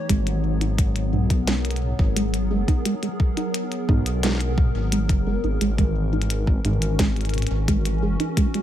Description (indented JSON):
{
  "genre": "IDM",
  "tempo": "87 BPM",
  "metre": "4/4",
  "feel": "straight",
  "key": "G# minor",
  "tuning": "A4 = 440 Hz",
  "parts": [
    { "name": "hollow soft pad", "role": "sustained chords", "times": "0.0-8.6 s", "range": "E3 to C#5", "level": "-29 LUFS", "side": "left 1 dB", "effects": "ensemble chorus" },
    { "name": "deep acid bass", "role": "arpeggios", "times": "0.1-8.6 s", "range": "G#2 to D#4", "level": "-27 LUFS", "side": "right 2 dB", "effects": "analog chorus, digital delay" },
    { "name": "dark detuned saw bass", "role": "bass", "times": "0.1-8.2 s", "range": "F#1 to B1", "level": "-24 LUFS", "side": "equal", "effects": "none" },
    { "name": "electronic kick drum", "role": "drums", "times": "0.1-8.5 s", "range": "none", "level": "-21 LUFS", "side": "equal", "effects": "small room ambience" },
    { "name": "glitchy drum kit", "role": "drums", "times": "0.1-8.6 s", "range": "hi-hat, snare drum", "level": "-29 LUFS", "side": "left 2 dB", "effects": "small room ambience, digital delay" }
  ],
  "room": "little or no reverb",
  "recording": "none",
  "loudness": "-20 LUFS",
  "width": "side -11 dB against mid",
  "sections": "0.0-8.6 A section",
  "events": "none",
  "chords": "0.1 G#m9; 5.6 F#7",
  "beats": "| 0.10 0.78 1.47 2.16 | 2.85 3.54 4.23 4.92 | 5.61 6.30 6.99 7.68 | 8.37"
}